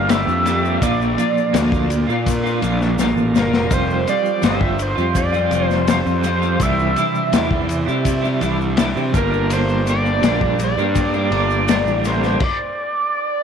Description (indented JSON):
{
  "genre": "psychedelic rock",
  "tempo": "83 BPM",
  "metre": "4/4",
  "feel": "straight",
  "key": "G dorian",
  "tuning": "A4 = 442 Hz",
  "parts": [
    { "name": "overdriven synth lead", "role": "melody", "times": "0.0-13.4 s", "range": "Bb4 to F5", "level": "-22 LUFS", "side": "right 1 dB", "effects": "phaser, tape echo" },
    { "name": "tonewheel organ", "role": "sustained chords", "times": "0.0-12.4 s", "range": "E4 to C6", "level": "-31 LUFS", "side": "right 12 dB", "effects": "overdrive, slow rotary speaker" },
    { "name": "twelve-string electric guitar", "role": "riff", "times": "0.0-12.4 s", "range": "G2 to G4", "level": "-21 LUFS", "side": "equal", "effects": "tremolo, double-tracked left and right" },
    { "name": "fuzz picked electric bass", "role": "bass", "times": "0.0-12.4 s", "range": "F1 to C3", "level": "-21 LUFS", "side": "right 1 dB", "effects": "overdrive, transformer saturation" },
    { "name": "crunchy breakbeat drum kit", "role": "drums", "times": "0.1-12.6 s", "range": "crash cymbal, kick drum, ride cymbal, snare drum", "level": "-22 LUFS", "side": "left 4 dB", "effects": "none" },
    { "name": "tube shaker", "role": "percussion", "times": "0.1-12.3 s", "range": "none", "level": "-37 LUFS", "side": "left 14 dB", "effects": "none" }
  ],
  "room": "light reverb, small room ambience",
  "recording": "1960s-style stereo with parts hard left and right",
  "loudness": "-16 LUFS",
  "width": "side -7 dB against mid",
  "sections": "0.0-13.4 A section",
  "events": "drum fill 3.0-3.7; stop 12.4-13.4",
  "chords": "0.0 Gm; 0.8 Bb; 3.7 Fsus2; 6.6 Cadd9; 9.1 Gm; 12.4 N.C."
}